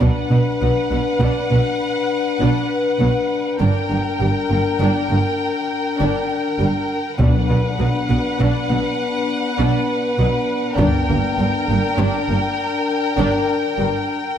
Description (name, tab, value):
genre	cinematic, epic orchestral film score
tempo	67 BPM (dotted quarters)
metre	12/8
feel	straight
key	unclear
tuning	A4 = 436 Hz
part	warm symphonic violin section	melody	0.0-14.3 s	F#5 to G5	-26 LUFS	left 2 dB	none
part	warm symphonic violin section	second line	0.0-14.4 s	Bb4 to B4	-26 LUFS	left 1 dB	none
part	dark symphonic viola section	accompaniment	0.0-13.9 s	F#3 to D4	-26 LUFS	equal	none
part	mellow French horn section	sustained chords	0.0-14.2 s	B3 to B4	-23 LUFS	left 4 dB	none
part	rich symphonic cello section	bass	0.0-13.9 s	G2 to B2	-22 LUFS	right 2 dB	none
part	warm symphonic double bass section	bass	0.0-13.9 s	G1 to B1	-22 LUFS	right 3 dB	none
part	taiko ensemble	drums	0.0-1.2, 7.2-11.3 s	none	-22 LUFS	left 1 dB	none
part	timpani	percussion	7.2-8.1 s	B2	-25 LUFS	left 1 dB	none
room	moderate scoring stage reverb, RT60 1.5 s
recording	none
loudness	-16 LUFS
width	side -9 dB against mid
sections	0.0-14.4 A section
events	build-up 0.0-14.4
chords	0.0 Bm; 3.6 Gm; 7.2 Bm; 10.8 Gm